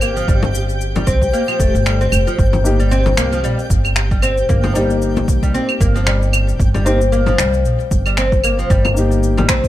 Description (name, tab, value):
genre	organic downtempo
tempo	114 BPM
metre	4/4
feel	swing 56% on 16ths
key	unclear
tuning	A4 = 440 Hz
part	oud	arpeggios	0.0-9.6 s	F3 to C4	-19 LUFS	left 2 dB	ping-pong delay
part	upright bass	bass	0.0-9.7 s	F1 to C2	-17 LUFS	equal	sidechain pumping
part	electronic claves, shaker and finger snaps	drums	0.0-9.7 s	none	-21 LUFS	right 1 dB	overdrive
part	twinkling granular texture	texture	0.0-9.7 s	G4 to G5	-30 LUFS	right 2 dB	built-in reverb
part	electronic kick drum	drums	0.3-9.7 s	none	-17 LUFS	equal	none
part	frame drum	percussion	0.4-9.5 s	none	-23 LUFS	left 3 dB	none
part	felt-muted upright piano	accompaniment	2.6-9.7 s	Bb3 to G4	-22 LUFS	left 3 dB	sidechain pumping, ping-pong delay
room	light reverb, studio reverb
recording	dark, warm production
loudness	-13 LUFS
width	side -14 dB against mid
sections	0.0-9.7 A section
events	none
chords	0.0 G7(no3); 2.4 Eb/G